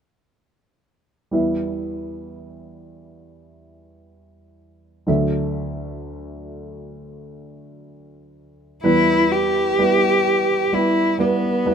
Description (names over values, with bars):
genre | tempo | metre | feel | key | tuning
acoustic folk-pop ballad | 64 BPM | 4/4 | straight | E minor | A4 = 439 Hz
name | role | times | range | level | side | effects
dark baby grand piano | accompaniment | 1.3-11.7 s | D2 to E5 | -22 LUFS | right 2 dB | none
warm cello | melody | 8.8-11.7 s | B3 to G4 | -17 LUFS | left 1 dB | none
room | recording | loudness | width
moderate plate reverb, RT60 2.9 s | minimal, uncompressed stereo recording | -17 LUFS | side -7 dB against mid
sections
1.3-8.8 A section; 8.8-11.7 B section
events
none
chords
1.3 Em; 5.1 Dadd9; 8.8 Em